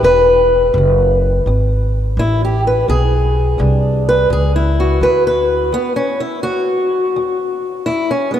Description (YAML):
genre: acoustic country blues, solo or duo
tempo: 84 BPM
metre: 4/4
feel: swing 60% on 8ths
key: E mixolydian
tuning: A4 = 439 Hz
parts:
  - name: fingerpicked acoustic archtop guitar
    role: melody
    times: 0.0-8.4 s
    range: E2 to B4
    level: -14 LUFS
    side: left 1 dB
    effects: none
  - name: upright bass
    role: bass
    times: 0.0-5.7 s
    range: E1 to D2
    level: -15 LUFS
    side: equal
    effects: none
room: wet cathedral reverb, RT60 5.0 s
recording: in a vast, echoing space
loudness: -12 LUFS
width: side -10 dB against mid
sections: 0.0-5.7 A section; 5.7-8.4 B section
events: steel-string acoustic guitar solo 5.7-8.4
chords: 0.0 E7; 5.7 N.C.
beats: | 0.03 0.74 1.46 2.17 | 2.88 3.60 4.31 5.02 | 5.73 6.44 7.15 7.86